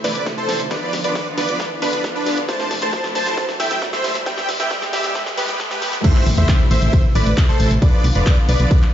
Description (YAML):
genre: uplifting trance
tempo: 135 BPM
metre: 4/4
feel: straight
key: A minor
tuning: A4 = 440 Hz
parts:
  - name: dense compressed supersaw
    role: melody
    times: 0.0-8.8 s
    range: D4 to A5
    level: -21 LUFS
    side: right 1 dB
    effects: sidechain pumping, ping-pong delay
  - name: clear studio string section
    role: sustained chords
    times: 0.0-8.8 s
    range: C3 to G4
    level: -26 LUFS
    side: right 1 dB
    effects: sidechain pumping
  - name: solid FM bass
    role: bass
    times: 0.0-8.7 s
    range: E1 to E2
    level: -19 LUFS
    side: equal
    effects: sidechain pumping, high-pass filter
  - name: big-room dance drum kit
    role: drums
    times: 0.0-8.9 s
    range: crash cymbal, handclaps, hi-hat, ride cymbal, snare drum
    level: -26 LUFS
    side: left 1 dB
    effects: sidechain pumping on hats, high-pass filter on hats, small room ambience, high-pass filter on snare, sidechain pumping on cymbals, high-pass filter on cymbals
  - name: riser and impact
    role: sound effects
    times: 0.0-7.8 s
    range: none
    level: -28 LUFS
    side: equal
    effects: none
  - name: electronic kick drum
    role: drums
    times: 0.3-8.8 s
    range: none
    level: -16 LUFS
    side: equal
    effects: high-pass filter on kick, small room ambience
room: light reverb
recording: played on a big sound system in a bare room, stone room reverb, high-pass filter, nothing above 7.6 kHz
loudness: -16 LUFS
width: side -10 dB against mid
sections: 0.0-6.0 A section; 6.0-8.9 B section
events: build-up 0.0-6.0; drum fill 0.0-6.0; riser 0.0-6.0; drop 6.0-8.9; impact 6.0-7.8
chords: 0.0 Am; 0.7 Bdim; 2.5 Am; 4.3 Em; 6.0 Am; 7.8 Bdim